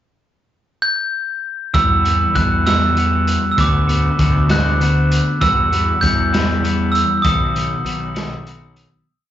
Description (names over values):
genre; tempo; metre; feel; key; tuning
indie rock; 66 BPM (dotted quarters); 6/8; straight; E minor; A4 = 440 Hz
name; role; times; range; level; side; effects
glockenspiel with soft plastic mallets; melody; 0.8-8.4 s; D6 to G6; -18 LUFS; right 1 dB; slapback echo
twelve-string electric guitar; riff; 1.7-9.1 s; B2 to F#4; -22 LUFS; left 4 dB; none
fuzz picked electric bass; bass; 1.7-8.9 s; B1 to E2; -19 LUFS; equal; overdrive
raw garage drum kit; drums; 1.7-8.9 s; hi-hat, kick drum, snare drum; -21 LUFS; equal; none
room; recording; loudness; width
little or no reverb; live gig heard through the venue's PA, club reverb, nothing above 7.6 kHz; -14 LUFS; side -11 dB against mid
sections
0.0-1.7 pickup bar; 1.7-9.1 verse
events
fade-out 7.2-9.1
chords
0.0 N.C.; 1.7 Emadd9; 3.6 D6; 5.4 Emadd9; 7.2 B